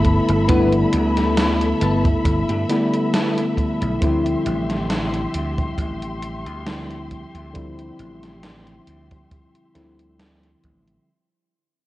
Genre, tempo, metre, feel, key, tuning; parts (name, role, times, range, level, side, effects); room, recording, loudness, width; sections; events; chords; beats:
vaporwave; 68 BPM; 4/4; swing 54% on 16ths; A4 = 441 Hz
tine electric piano; accompaniment; 0.0-11.1 s; D3 to E4; -22 LUFS; equal; analog chorus, analog delay
dark studio string section; sustained chords; 0.0-11.0 s; G4 to C6; -28 LUFS; left 2 dB
clean electric guitar; riff; 0.0-3.9 s; B3 to B4; -28 LUFS; left 2 dB; ensemble chorus, analog delay
vintage slap bass; bass; 0.0-11.0 s; G1 to G2; -24 LUFS; equal
gated 80s digital drum machine; drums; 0.0-11.0 s; hi-hat, snare drum; -26 LUFS; equal; gated reverb, gated reverb snare, studio reverb
kick drum; drums; 0.0-10.8 s; -22 LUFS; equal; studio reverb
light reverb, small room ambience; worn, warbling old tape, cassette tape, warbly pitch drift; -18 LUFS; side -16 dB against mid
0.0-11.1 A section
fade-out 0.0-11.1
0.0 G69; 4.0 Dm11
| 0.49 1.37 2.25 3.14 | 4.02 4.90 5.78 6.67 | 7.55 8.43 9.31 10.20